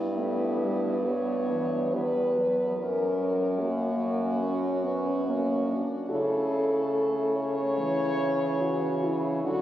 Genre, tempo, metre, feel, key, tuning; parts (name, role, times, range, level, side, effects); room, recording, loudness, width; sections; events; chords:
classical, lyrical piece for horn quartet; 72 BPM; 4/4; rubato; A4 = 440 Hz
mellow French horn; second line; 0.0-9.6 s; B3 to F#4; -32 LUFS; right 3 dB
mellow French horn; accompaniment; 0.0-9.6 s; E3 to C#4; -33 LUFS; left 1 dB
clear French horn; bass; 0.0-9.6 s; E2 to D3; -30 LUFS; equal
clear French horn; melody; 0.2-9.6 s; E4 to C#5; -30 LUFS; left 2 dB
wet church reverb, RT60 3.9 s; recorded on a phone in the room, studio reverb; -25 LUFS; side -12 dB against mid
0.0-9.6 A section
0.0 Em/G; 2.8 F#; 6.1 A/C#